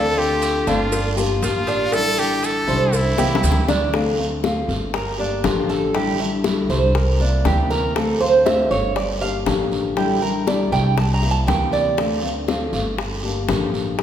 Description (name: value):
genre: latin, Cuban son and guajira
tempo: 119 BPM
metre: 4/4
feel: straight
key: D minor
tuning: A4 = 439 Hz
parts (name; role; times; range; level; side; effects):
- brilliant trumpet; melody; 0.0-3.7 s; E4 to A4; -23 LUFS; equal; none
- nylon-string guitar; accompaniment; 0.0-14.0 s; C3 to G4; -23 LUFS; left 3 dB; none
- Cuban tres; arpeggios; 0.0-12.4 s; D4 to Bb5; -22 LUFS; right 4 dB; none
- upright bass; bass; 0.0-14.0 s; G1 to D2; -23 LUFS; equal; none
- cowbell and bongos; percussion; 0.4-14.0 s; none; -26 LUFS; left 4 dB; none
- guiro; percussion; 0.4-14.0 s; none; -32 LUFS; right 4 dB; none
- maracas; percussion; 0.4-3.9 s; none; -35 LUFS; right 6 dB; none
room: wet recital hall reverb, RT60 1.6 s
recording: recorded in a church or concert hall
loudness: -17 LUFS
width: side -10 dB against mid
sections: 0.0-3.9 A section; 3.9-14.0 B section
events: drum fill 3.2-3.9; Cuban tres solo 3.9-14.0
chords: 0.0 Dm7; 0.9 Gm7; 1.9 A7sus4; 2.9 C7; 3.9 Dm7; 4.9 Gm7; 5.9 A7sus4; 7.0 C7; 8.0 Dm7; 9.0 Gm7; 10.0 A7sus4; 11.0 C7; 12.0 Dm7; 13.0 Gm7